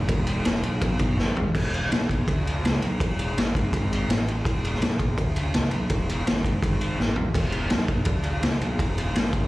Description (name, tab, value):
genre	garage rock duo or trio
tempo	165 BPM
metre	4/4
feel	straight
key	E mixolydian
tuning	A4 = 435 Hz
part	fuzz picked electric bass	bass	0.0-9.5 s	E1 to D2	-26 LUFS	equal	overdrive
part	raw garage drum kit	drums	0.1-9.4 s	crash cymbal, kick drum, ride cymbal, snare drum, toms	-24 LUFS	equal	none
room	light reverb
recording	live gig heard through the venue's PA, club reverb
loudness	-22 LUFS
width	side -18 dB against mid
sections	0.0-1.5 A section; 1.5-9.5 B section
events	drum fill 1.2-1.5, 7.0-7.4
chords	none